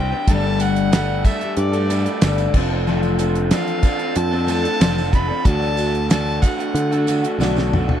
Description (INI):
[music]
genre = folk rock and heartland rock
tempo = 93 BPM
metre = 4/4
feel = straight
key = unclear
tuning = A4 = 440 Hz
[part]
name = rich fiddle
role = melody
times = 0.0-7.4 s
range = D5 to B5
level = -26 LUFS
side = right 1 dB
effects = none
[part]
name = picked twelve-string acoustic guitar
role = accompaniment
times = 0.0-8.0 s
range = G2 to C5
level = -23 LUFS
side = left 5 dB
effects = none
[part]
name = electric guitar through a small old amp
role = riff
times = 0.0-8.0 s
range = C3 to A4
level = -24 LUFS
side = right 2 dB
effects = spring reverb
[part]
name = picked electric bass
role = bass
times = 0.0-7.9 s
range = F1 to D3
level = -21 LUFS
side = equal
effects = none
[part]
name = damped 70s drum kit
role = drums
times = 0.3-8.0 s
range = crash cymbal, hi-hat, kick drum, snare drum, toms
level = -18 LUFS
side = equal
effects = none
[part]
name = tambourine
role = percussion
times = 0.3-7.8 s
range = none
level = -40 LUFS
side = right 16 dB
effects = none
[sound]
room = light reverb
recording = dry, close 1970s-style studio recording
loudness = -16 LUFS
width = side -10 dB against mid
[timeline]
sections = 0.0-8.0 A section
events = drum fill 7.4-8.0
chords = 0.3 Gsus2; 2.5 F6; 5.5 D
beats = | 0.28 0.93 1.57 2.22 | 2.87 3.52 4.16 4.81 | 5.46 6.11 6.76 7.40